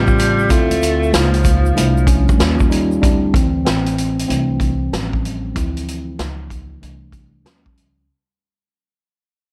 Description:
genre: hip hop, jazz-hop.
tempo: 95 BPM.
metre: 4/4.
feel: swing 65% on 16ths.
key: unclear.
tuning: A4 = 441 Hz.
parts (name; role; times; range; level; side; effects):
lap resonator guitar; melody; 0.0-2.4 s; C4; -38 LUFS; equal; none.
breathy tenor saxophone; second line; 0.0-2.4 s; F3 to A3; -23 LUFS; equal; none.
mellow tine electric piano; accompaniment; 0.0-8.1 s; C#3 to E#4; -22 LUFS; equal; none.
upright bass; bass; 0.0-8.1 s; A1 to Eb2; -22 LUFS; equal; none.
vintage drum kit; drums; 0.1-8.0 s; hi-hat, kick drum, snare drum; -20 LUFS; equal; none.
egg shaker and congas; percussion; 0.1-3.0 s; none; -37 LUFS; equal; none.
room: light reverb, small room reverb.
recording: echo-heavy mix.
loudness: -16 LUFS.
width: mono.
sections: 0.0-3.0 A section; 3.0-8.1 B section.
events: fade-out 3.0-8.1; tine electric piano solo 3.0-8.1.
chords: 0.0 A7alt; 0.5 Dm9; 1.1 Db69; 1.8 C69; 2.4 Eb9; 3.0 D9sus4; 4.3 C69; 4.9 A7alt; 5.6 Dm9; 6.2 Db69; 6.8 C69; 7.5 Eb9.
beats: | 0.50 1.14 1.77 2.40 | 3.03 3.66 4.29 4.92 | 5.56 6.19 6.82 7.45.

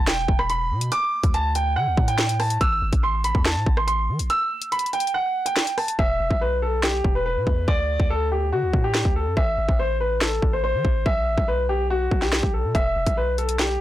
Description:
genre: hip hop, drill.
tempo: 142 BPM.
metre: 4/4.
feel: half-time.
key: E minor.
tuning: A4 = 440 Hz.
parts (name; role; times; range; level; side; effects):
warm concert grand piano; melody; 0.0-13.8 s; F#4 to E6; -23 LUFS; equal; low-pass filter, slapback echo.
long sustained 808-style bass; bass; 0.0-13.8 s; E1 to E3; -25 LUFS; equal; none.
drill drum kit; drums; 0.1-13.7 s; handclaps, hi-hat, kick drum, rim click, snare drum; -22 LUFS; equal; none.
room: little or no reverb.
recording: blown-out, overdriven recording, overdrive.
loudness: -20 LUFS.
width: side -14 dB against mid.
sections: 0.0-6.0 A section; 6.0-13.8 B section.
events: kick muted 4.3-6.0; hi-hats muted 6.0-12.7.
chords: 0.0 E5; 0.9 D5; 2.6 Am; 4.3 N.C.; 6.0 E5; 7.7 D5; 9.4 Am; 11.1 Bsus4; 12.7 E5.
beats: 0.07 0.49 | 0.92 1.34 1.76 2.19 | 2.61 3.03 3.45 3.88 | 4.30 4.72 5.14 5.57 | 5.99 6.41 6.83 7.26 | 7.68 8.10 8.52 8.95 | 9.37 9.79 10.21 10.64 | 11.06 11.48 11.90 12.33 | 12.75 13.17 13.59.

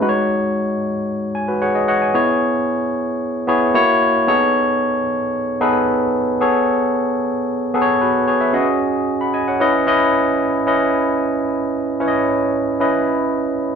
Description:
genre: pop.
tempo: 112 BPM.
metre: 4/4.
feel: straight.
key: C# minor.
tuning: A4 = 441 Hz.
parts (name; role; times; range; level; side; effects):
barky tine electric piano; solo; 0.0-13.8 s; G#3 to B5; -15 LUFS; equal; overdrive.
room: wet studio reverb, RT60 0.8 s.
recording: band playing live in one room.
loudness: -15 LUFS.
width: side -6 dB against mid.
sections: 0.0-10.7 A section; 10.7-13.8 B section.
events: tine electric piano fill 1.1-2.1.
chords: 0.0 G#7sus4; 2.1 C#m7; 3.7 F#7; 4.3 B13; 6.4 Amaj9; 8.5 G#7sus4; 9.6 C#m9.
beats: | 0.01 0.55 1.08 1.61 | 2.15 2.68 3.21 3.75 | 4.28 4.81 5.35 5.88 | 6.41 6.95 7.48 8.01 | 8.54 9.08 9.61 10.14 | 10.67 11.21 11.74 12.27 | 12.81 13.34.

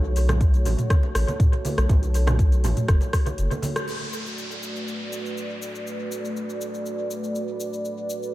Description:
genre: afro house.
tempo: 121 BPM.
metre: 4/4.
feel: swing 53% on 16ths.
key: B minor.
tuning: A4 = 440 Hz.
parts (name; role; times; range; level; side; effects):
dark analog pad; sustained chords; 0.0-8.3 s; A3 to D5; -30 LUFS; equal; chorus, sidechain pumping.
round analog bass; bass; 0.0-3.5 s; F#1 to B1; -22 LUFS; equal; sidechain pumping.
afro-pop drum kit; drums; 0.2-8.3 s; crash cymbal, hi-hat, rim click, shaker, toms; -30 LUFS; equal; analog delay.
congas; percussion; 0.2-3.7 s; none; -30 LUFS; right 2 dB; analog delay.
electronic kick drum; drums; 0.4-3.2 s; none; -19 LUFS; equal; none.
downlifter; sound effects; 3.9-7.8 s; none; -37 LUFS; equal; none.
room: light reverb.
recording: echo-heavy mix.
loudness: -22 LUFS.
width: side -16 dB against mid.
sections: 0.0-3.9 A section; 3.9-8.3 B section.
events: break 3.4-3.9; band accent 3.8.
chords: 0.0 F#m; 3.9 Bm7.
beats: 0.41 0.90 1.40 | 1.89 2.39 2.89 3.38 | 3.88 4.37 4.87 5.37 | 5.86 6.36 6.85 7.35 | 7.84 8.34.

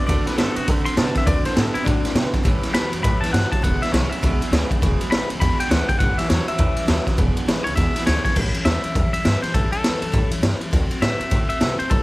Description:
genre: rockabilly.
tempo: 203 BPM.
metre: 4/4.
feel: swing 62% on 8ths.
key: A mixolydian.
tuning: A4 = 441 Hz.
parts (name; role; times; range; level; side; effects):
twangy electric guitar; melody; 0.0-12.0 s; D4 to C6; -25 LUFS; left 2 dB; analog delay.
picked steel-string acoustic guitar; accompaniment; 0.0-12.0 s; E2 to F#4; -30 LUFS; left 2 dB; none.
electric guitar through a small old amp; riff; 0.0-8.3 s; E2 to B3; -28 LUFS; right 4 dB; none.
upright bass; bass; 0.1-12.0 s; E1 to D3; -24 LUFS; equal; none.
raw garage drum kit; drums; 0.1-12.0 s; crash cymbal, kick drum, ride cymbal, snare drum; -20 LUFS; equal; none.
room: light reverb, small room ambience.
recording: none.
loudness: -18 LUFS.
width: side -20 dB against mid.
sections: 0.0-8.4 A section; 8.4-12.0 B section.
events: clean electric guitar solo 0.0-8.4.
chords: 0.0 D7; 2.5 A7; 3.6 E7; 6.0 A7; 7.2 E7; 8.4 A7; 10.7 D7.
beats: | 0.09 0.38 0.68 0.97 | 1.27 1.57 1.86 2.16 | 2.45 2.75 3.04 3.34 | 3.64 3.93 4.23 4.52 | 4.82 5.12 5.41 5.71 | 6.00 6.30 6.59 6.89 | 7.18 7.48 7.77 8.07 | 8.36 8.66 8.95 9.25 | 9.54 9.84 10.13 10.43 | 10.72 11.02 11.31 11.61 | 11.90.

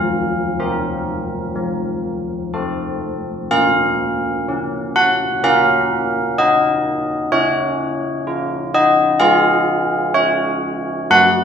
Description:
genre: classical, tune for church bells.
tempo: 62 BPM.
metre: 4/4.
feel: straight.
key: unclear.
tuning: A4 = 439 Hz.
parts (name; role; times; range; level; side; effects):
old church bells; solo; 0.0-11.4 s; F3 to Gb5; -15 LUFS; equal; none.
room: moderate recital hall reverb, RT60 1.3 s.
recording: none.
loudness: -15 LUFS.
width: side -7 dB against mid.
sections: 0.0-11.4 A section.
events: none.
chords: 0.0 Fsus4; 1.6 F; 3.5 Bbm; 7.3 Db.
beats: 0.60 1.57 2.55 | 3.52 4.49 5.45 6.40 | 7.34 8.27 9.21 10.15 | 11.12.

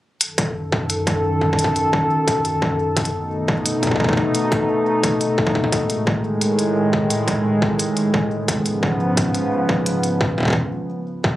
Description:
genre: IDM.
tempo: 87 BPM.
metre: 4/4.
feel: straight.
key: F# melodic minor.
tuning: A4 = 440 Hz.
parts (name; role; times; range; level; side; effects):
warbly tape-like pad; sustained chords; 0.2-11.4 s; F#2 to A4; -19 LUFS; equal; chorus, built-in reverb.
electronic hi-hat; drums; 0.2-10.2 s; none; -24 LUFS; equal; none.
electronic kick drum; drums; 0.4-11.4 s; none; -20 LUFS; equal; distortion.
room: moderate lush hall reverb, RT60 1.9 s, digital ambience.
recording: recorded on a phone in the room, club reverb.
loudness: -17 LUFS.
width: side -15 dB against mid.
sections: 0.2-11.2 A section.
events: stop 10.6-11.2.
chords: 0.2 F#m6; 3.0 B7; 5.7 G#5; 8.5 C#7/G#.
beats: | 0.21 0.90 1.59 2.28 | 2.97 3.65 4.34 5.04 | 5.72 6.41 7.10 7.79 | 8.48 9.17 9.86 10.55 | 11.24.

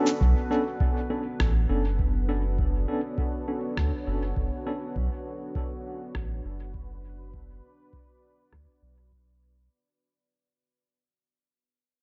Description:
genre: ambient dub.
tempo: 101 BPM.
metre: 4/4.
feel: straight.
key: B minor.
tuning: A4 = 441 Hz.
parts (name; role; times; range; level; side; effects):
deep dark ambient pad; sustained chords; 0.0-9.7 s; B3 to D5; -37 LUFS; equal; chorus, built-in reverb.
tine electric piano; stabs; 0.0-4.8 s; B3 to A4; -33 LUFS; equal; medium tremolo, dub echo.
electronic shaker and rim click; drums; 0.1-8.6 s; none; -38 LUFS; equal; low-pass filter on perc, low-pass filter on snare, low-pass filter on toms, dub echo.
soft dub sub bass; bass; 0.2-9.7 s; F#1 to D2; -29 LUFS; equal; none.
electronic kick drum; drums; 0.2-9.2 s; none; -32 LUFS; equal; none.
room: light reverb.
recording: nothing above 7.7 kHz.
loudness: -28 LUFS.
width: mono.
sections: 0.2-9.7 A section.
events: break 0.0; fade-out 0.2-9.7; filter sweep on drum 0.2-9.7; filter sweep on sub bass 0.2-9.7.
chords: 0.2 Bm9.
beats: | 0.21 0.80 1.40 1.99 | 2.58 3.18 3.77 4.37 | 4.96 5.55 6.15 6.74 | 7.34 7.93 8.52 9.12.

